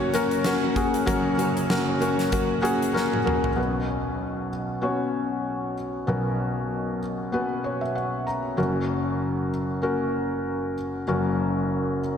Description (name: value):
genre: piano-driven pop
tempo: 96 BPM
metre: 4/4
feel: swing 56% on 16ths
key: unclear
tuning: A4 = 440 Hz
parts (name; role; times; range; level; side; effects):
- felt-muted upright piano; accompaniment; 0.0-12.2 s; F#1 to A#5; -24 LUFS; left 1 dB; none
- mellow hollow large flute ensemble; sustained chords; 0.0-3.5 s; F#4 to C#5; -35 LUFS; right 2 dB; none
- picked steel-string acoustic guitar; riff; 0.0-3.6 s; F#3 to F#4; -34 LUFS; right 7 dB; lush chorus
- huge arena drum kit; drums; 0.1-3.6 s; hi-hat, kick drum, snare drum, toms; -30 LUFS; right 1 dB; none
room: wet lush hall reverb, RT60 2.7 s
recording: dreamy mix soaked in reverb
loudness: -23 LUFS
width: side -8 dB against mid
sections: 0.0-3.6 A section; 3.6-12.2 B section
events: drum fill 3.0-3.6; felt piano fill 7.3-8.6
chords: 0.0 F#; 3.6 Bsus2; 8.6 F#